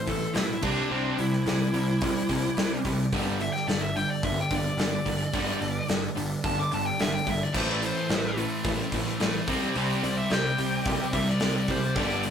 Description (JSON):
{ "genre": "hard rock", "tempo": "109 BPM", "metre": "4/4", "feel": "straight", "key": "unclear", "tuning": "A4 = 440 Hz", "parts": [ { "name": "dark smooth lead guitar", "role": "melody", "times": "0.0-12.3 s", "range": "D4 to D6", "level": "-30 LUFS", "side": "left 1 dB", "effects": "overdrive" }, { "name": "overdriven tonewheel organ", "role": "sustained chords", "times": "0.0-12.3 s", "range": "G3 to D5", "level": "-39 LUFS", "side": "right 1 dB", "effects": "slow rotary speaker, chorus vibrato" }, { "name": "overdriven electric guitar", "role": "riff", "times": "0.0-12.3 s", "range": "G2 to C4", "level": "-31 LUFS", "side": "left 3 dB", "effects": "none" }, { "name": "tight distorted guitar", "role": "riff", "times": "0.0-12.3 s", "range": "G2 to C4", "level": "-33 LUFS", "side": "right 5 dB", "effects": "distortion" }, { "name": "fuzz picked electric bass", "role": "bass", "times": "0.1-12.3 s", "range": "G1 to C2", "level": "-33 LUFS", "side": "equal", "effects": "overdrive" }, { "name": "gated 80s drum kit", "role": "drums", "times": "0.1-12.3 s", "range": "crash cymbal, hi-hat, kick drum, snare drum", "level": "-30 LUFS", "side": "equal", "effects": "none" }, { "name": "heavy high-gain guitar", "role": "riff", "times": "7.5-12.3 s", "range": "G2 to C4", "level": "-34 LUFS", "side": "equal", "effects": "distortion" } ], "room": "wet studio reverb, RT60 0.6 s", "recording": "rough rehearsal-room recording, tube saturation", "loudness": "-24 LUFS", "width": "side -8 dB against mid", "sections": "0.0-12.3 A section", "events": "lead electric guitar solo 0.0-12.3", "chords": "0.0 Am; 0.6 C; 3.1 G5; 7.5 Am; 9.5 C5" }